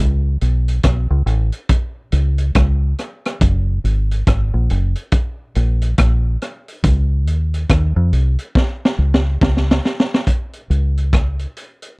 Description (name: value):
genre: lovers rock reggae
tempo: 70 BPM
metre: 4/4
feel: swing 62% on 16ths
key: Db major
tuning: A4 = 436 Hz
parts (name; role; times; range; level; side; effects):
- deep dub fingered electric bass; bass; 0.0-11.4 s; Gb1 to F2; -15 LUFS; equal; none
- crunchy breakbeat drum kit; drums; 0.4-12.0 s; hi-hat, kick drum, rim click, snare drum; -16 LUFS; equal; none
room: little or no reverb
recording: dry, close 1970s-style studio recording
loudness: -15 LUFS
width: side -31 dB against mid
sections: 0.0-10.3 A section; 10.3-12.0 B section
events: drum fill 8.6-10.3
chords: none